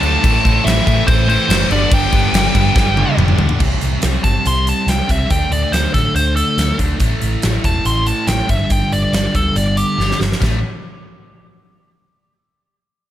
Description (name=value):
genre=hard rock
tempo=141 BPM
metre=4/4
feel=straight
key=A minor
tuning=A4 = 441 Hz
part: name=nasal lead guitar with a parked wah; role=melody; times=0.0-10.2 s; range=G4 to C6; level=-19 LUFS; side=equal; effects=overdrive
part: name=sludgy distorted guitar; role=riff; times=0.0-10.6 s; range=G2 to D4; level=-21 LUFS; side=right 1 dB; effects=overdrive
part: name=tight distorted guitar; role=riff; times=0.0-3.6 s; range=G2 to F4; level=-22 LUFS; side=right 1 dB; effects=distortion
part: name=picked electric bass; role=bass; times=0.0-10.6 s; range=E1 to A2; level=-18 LUFS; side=equal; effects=none
part: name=huge arena drum kit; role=drums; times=0.0-10.5 s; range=crash cymbal, hi-hat, kick drum, snare drum, toms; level=-18 LUFS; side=equal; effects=none
room=studio ambience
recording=none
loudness=-13 LUFS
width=side -12 dB against mid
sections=0.0-3.6 A section; 3.6-10.4 B section; 10.4-12.1 C section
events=drum fill 2.8-3.6, 10.0-10.4; lead electric guitar solo 3.6-10.4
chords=0.2 Am; 1.7 G; 3.6 C5; 5.3 D5; 7.0 A5; 8.5 G5; 10.4 A5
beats=| 0.23 0.65 1.07 1.49 | 1.91 2.33 2.75 3.18 | 3.60 4.02 4.45 4.87 | 5.29 5.72 6.14 6.57 | 6.99 7.42 7.85 8.27 | 8.70 9.13 9.55 9.98 | 10.41